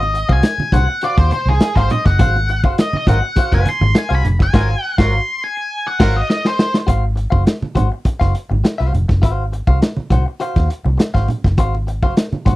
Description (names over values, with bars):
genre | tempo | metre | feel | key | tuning
funk | 102 BPM | 4/4 | straight | Ab mixolydian | A4 = 440 Hz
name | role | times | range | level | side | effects
octave-fuzz lead guitar | melody | 0.0-6.7 s | Ab4 to C6 | -20 LUFS | left 1 dB | distortion, slapback echo
vintage muted fingered electric bass | bass | 0.0-12.6 s | F1 to Eb2 | -16 LUFS | equal | none
congas | percussion | 0.0-12.6 s | none | -23 LUFS | right 3 dB | none
clean electric guitar | accompaniment | 0.1-12.6 s | Gb4 to Gb5 | -23 LUFS | left 2 dB | none
crunchy breakbeat drum kit | drums | 0.1-12.6 s | crash cymbal, hi-hat, kick drum, snare drum | -15 LUFS | equal | none
mellow horn section | second line | 3.1-6.2 s | Gb3 to Bb4 | -24 LUFS | right 3 dB | none
room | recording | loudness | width
little or no reverb | dry, close 1970s-style studio recording | -14 LUFS | side -17 dB against mid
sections
0.0-6.9 A section; 6.9-12.6 B section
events
lead electric guitar solo 0.0-6.9; band accent 4.5-6.9; drum fill 5.7-6.9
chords
0.0 Ab13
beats
0.44 1.03 1.61 | 2.20 2.78 3.37 3.95 | 4.54 5.12 5.71 6.29 | 6.88 7.46 8.05 8.64 | 9.23 9.81 10.40 10.99 | 11.58 12.16